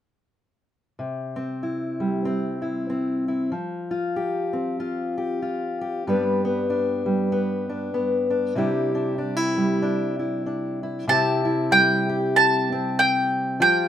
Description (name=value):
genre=acoustic folk duo or small band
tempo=95 BPM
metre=4/4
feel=swing 59% on 8ths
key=C major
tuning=A4 = 440 Hz
part: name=fingerpicked steel-string acoustic guitar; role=accompaniment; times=1.0-13.9 s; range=G2 to B4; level=-23 LUFS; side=left 1 dB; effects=none
part: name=mandolin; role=melody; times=11.1-13.9 s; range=G5 to A5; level=-19 LUFS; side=right 1 dB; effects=none
room=light reverb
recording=minimal, uncompressed stereo recording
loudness=-21 LUFS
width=side -10 dB against mid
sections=1.0-11.1 A section; 11.1-13.9 B section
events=none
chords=1.0 C; 3.5 Fsus2; 6.0 G; 8.6 Cadd9; 11.1 C